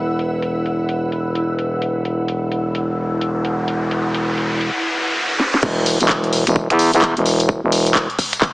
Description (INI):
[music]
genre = bass house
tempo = 129 BPM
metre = 4/4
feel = swing 62% on 16ths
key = unclear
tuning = A4 = 440 Hz
[part]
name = growling FM bass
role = bass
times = 0.0-8.1 s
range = E1 to E2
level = -18 LUFS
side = equal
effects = tube saturation, sidechain pumping
[part]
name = ethereal airy pad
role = texture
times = 0.0-4.7 s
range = E4 to E6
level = -25 LUFS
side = equal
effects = ensemble chorus, built-in reverb, phaser, sidechain pumping
[part]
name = house drum kit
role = drums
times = 0.2-8.5 s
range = crash cymbal, finger snaps, handclaps, hi-hat, snare drum, tambourine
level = -20 LUFS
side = equal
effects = overdrive, low-pass filter on hats, low-pass filter on snare, low-pass filter on cymbals, low-pass filter on perc
[part]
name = riser and impact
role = sound effects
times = 2.9-7.5 s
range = none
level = -24 LUFS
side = equal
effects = none
[part]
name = electronic kick drum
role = drums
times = 5.6-8.5 s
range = none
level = -22 LUFS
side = equal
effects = none
[sound]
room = moderate plate reverb, RT60 1.9 s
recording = heavily compressed radio sound, multiband compression, small speaker sound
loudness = -16 LUFS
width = side -23 dB against mid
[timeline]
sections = 0.0-5.6 A section; 5.6-8.5 B section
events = riser 2.9-5.6; drum fill 5.4; drop 5.6-8.5; impact 5.6-7.5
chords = 0.0 E5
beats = | 0.05 0.51 0.98 1.44 | 1.91 2.37 2.84 3.30 | 3.77 4.23 4.70 5.16 | 5.63 6.09 6.56 7.02 | 7.49 7.95 8.42